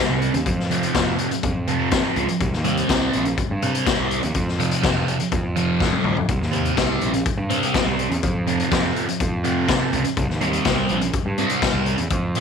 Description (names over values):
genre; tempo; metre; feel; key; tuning
psychedelic rock; 124 BPM; 4/4; straight; C minor; A4 = 441 Hz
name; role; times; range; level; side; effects
thick fuzz guitar; riff; 0.0-12.4 s; F2 to C4; -22 LUFS; right 2 dB; distortion, phaser
fuzz picked electric bass; bass; 0.1-12.4 s; Bb1 to G2; -25 LUFS; right 2 dB; overdrive
raw garage drum kit; drums; 0.2-12.4 s; hi-hat, kick drum, snare drum, toms; -23 LUFS; left 4 dB; none
room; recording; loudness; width
light reverb, small room ambience; 1960s-style stereo; -19 LUFS; side -6 dB against mid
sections
0.0-12.4 A section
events
drum fill 5.8-6.3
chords
0.5 F5; 2.4 Cm; 4.3 F5; 6.3 Cm; 8.2 F5; 10.2 Cm